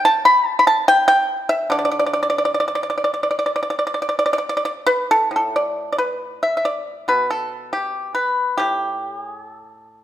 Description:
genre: chinese traditional, Chinese solo plucked strings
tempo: 63-74 BPM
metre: 4/4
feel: rubato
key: D zhi mode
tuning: A4 = 440 Hz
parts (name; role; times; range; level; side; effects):
- pipa; solo; 0.0-10.0 s; A2 to B5; -17 LUFS; equal; none
room: moderate recital hall reverb, RT60 1.6 s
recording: minimal, uncompressed stereo recording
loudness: -17 LUFS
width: side -12 dB against mid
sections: 0.0-5.3 A section; 5.3-10.0 B section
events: none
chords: none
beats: 0.04 0.86 | 1.71 2.57 3.46 4.39 | 5.33 6.23 7.10 7.96 | 8.83 9.69

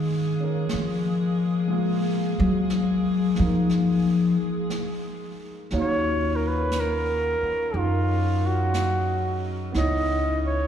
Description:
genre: jazz ballad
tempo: 60 BPM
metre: 4/4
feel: swing 68% on 8ths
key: F# major, Eb minor from 5.7 s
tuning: A4 = 442 Hz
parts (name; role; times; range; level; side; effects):
- warm concert grand piano; accompaniment; 0.0-10.7 s; Gb3 to F5; -31 LUFS; right 1 dB; none
- bright saxophone section; sustained chords; 0.0-10.7 s; Db3 to G#4; -36 LUFS; left 2 dB; none
- upright bass; bass; 0.0-10.7 s; Db2 to F#3; -24 LUFS; left 1 dB; none
- jazz brush drum kit; drums; 0.7-10.7 s; brushed snare drum, hi-hat, snare drum; -38 LUFS; right 3 dB; none
- clear flugelhorn; melody; 5.8-10.7 s; F4 to Eb5; -26 LUFS; right 1 dB; none
room: wet church reverb, RT60 3.0 s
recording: recorded in a church or concert hall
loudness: -22 LUFS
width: side -9 dB against mid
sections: 0.0-5.7 A section; 5.7-10.7 B section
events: upright bass solo 0.0-5.7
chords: 0.0 F#maj9; 5.7 Ebm9; 9.7 Dbm9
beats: 0.71 | 1.71 2.71 3.71 4.72 | 5.72 6.73 7.73 8.73 | 9.74

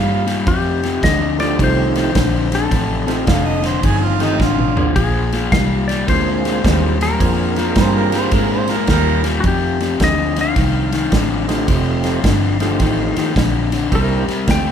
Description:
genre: electric blues shuffle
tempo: 107 BPM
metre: 4/4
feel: swing 64% on 8ths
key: F mixolydian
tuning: A4 = 440 Hz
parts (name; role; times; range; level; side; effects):
- warm harmonica; second line; 0.0-9.2 s; Eb4 to F5; -22 LUFS; right 6 dB; overdrive
- crunchy overdriven guitar; riff; 0.0-14.7 s; F2 to A3; -19 LUFS; left 5 dB; none
- vintage muted fingered electric bass; bass; 0.0-14.7 s; F1 to Ab2; -20 LUFS; right 1 dB; none
- natural country drum kit; drums; 0.3-14.7 s; kick drum, ride cymbal, snare drum, toms; -20 LUFS; right 1 dB; none
- clean lap steel guitar; melody; 0.5-14.7 s; Gb4 to G5; -23 LUFS; left 3 dB; none
- percussive tonewheel organ; accompaniment; 1.4-14.2 s; A3 to Ab4; -23 LUFS; right 6 dB; slow rotary speaker, overdrive, chorus vibrato
room: moderate large studio reverb, RT60 1.3 s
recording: band playing live in one room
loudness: -14 LUFS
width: side -8 dB against mid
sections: 0.0-14.7 A section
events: drum fill 4.4-5.0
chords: 0.5 F9; 5.0 Bb9; 9.4 F9; 13.9 C9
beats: | 0.47 1.03 1.59 2.15 | 2.71 3.28 3.84 4.40 | 4.96 5.52 6.08 6.64 | 7.20 7.76 8.32 8.88 | 9.44 10.00 10.56 11.12 | 11.68 12.24 12.80 13.36 | 13.92 14.48

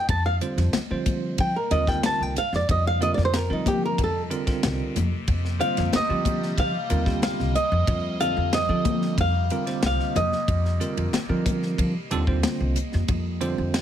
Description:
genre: electric jazz fusion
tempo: 92 BPM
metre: 4/4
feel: straight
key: unclear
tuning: A4 = 441 Hz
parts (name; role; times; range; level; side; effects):
- flamenco guitar; melody; 0.0-11.1 s; Eb4 to A5; -25 LUFS; equal; none
- evolving wavetable pad; sustained chords; 0.7-13.8 s; C3 to Eb5; -35 LUFS; right 1 dB; phaser, built-in reverb
- upright bass; bass; 0.1-13.8 s; C2 to F3; -26 LUFS; equal; none
- tight funk drum kit; drums; 0.1-13.8 s; hi-hat, kick drum, ride cymbal, snare drum; -29 LUFS; equal; none
- congas; percussion; 0.1-13.5 s; none; -31 LUFS; left 9 dB; none
- bell-like tine electric piano; accompaniment; 0.4-13.8 s; D3 to C5; -29 LUFS; right 4 dB; fast stereo tremolo
room: studio reverb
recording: none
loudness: -21 LUFS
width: side -10 dB against mid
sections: 0.0-13.8 A section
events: nylon-string guitar solo 0.0-13.8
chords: 0.0 F13sus4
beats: | 0.09 0.74 1.39 2.04 | 2.69 3.33 3.98 4.63 | 5.28 5.93 6.58 7.23 | 7.88 8.53 9.18 9.83 | 10.48 11.14 11.79 12.44 | 13.09 13.74

